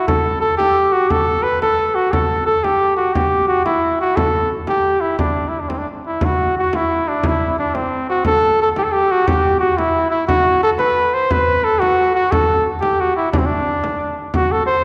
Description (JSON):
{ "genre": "medieval dance", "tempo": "118 BPM (dotted quarters)", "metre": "6/8", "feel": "straight", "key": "unclear", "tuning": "A4 = 440 Hz", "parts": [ { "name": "clear flugelhorn", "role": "melody", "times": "0.0-14.8 s", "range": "C4 to C5", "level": "-18 LUFS", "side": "equal", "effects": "none" }, { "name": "frame drum", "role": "percussion", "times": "0.1-14.6 s", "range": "none", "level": "-25 LUFS", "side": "equal", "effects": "none" } ], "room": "wet concert hall reverb, RT60 2.1 s", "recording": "recorded in a church or concert hall", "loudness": "-17 LUFS", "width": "mono", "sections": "0.0-6.2 A section; 6.2-14.3 A section", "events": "none", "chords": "none" }